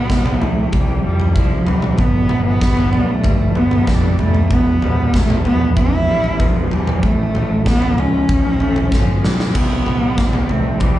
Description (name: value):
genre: quiet-loud alternative rock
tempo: 95 BPM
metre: 4/4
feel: straight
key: C major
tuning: A4 = 440 Hz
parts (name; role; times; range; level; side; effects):
- rich cello; melody; 0.0-11.0 s; F3 to E4; -19 LUFS; equal; slapback echo
- electric guitar through a small old amp; arpeggios; 0.0-11.0 s; E2 to E4; -24 LUFS; equal; tremolo
- overdriven fingered electric bass; bass; 0.0-11.0 s; E1 to F2; -20 LUFS; equal; none
- huge arena drum kit; drums; 0.1-11.0 s; crash cymbal, kick drum, snare drum, toms; -17 LUFS; equal; none
room: little or no reverb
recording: live gig heard through the venue's PA, club reverb, nothing above 10.9 kHz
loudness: -13 LUFS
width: side -14 dB against mid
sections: 0.0-11.0 A section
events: drum fill 8.9-9.6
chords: 0.0 C; 2.0 G; 4.5 Em; 7.0 A; 9.6 C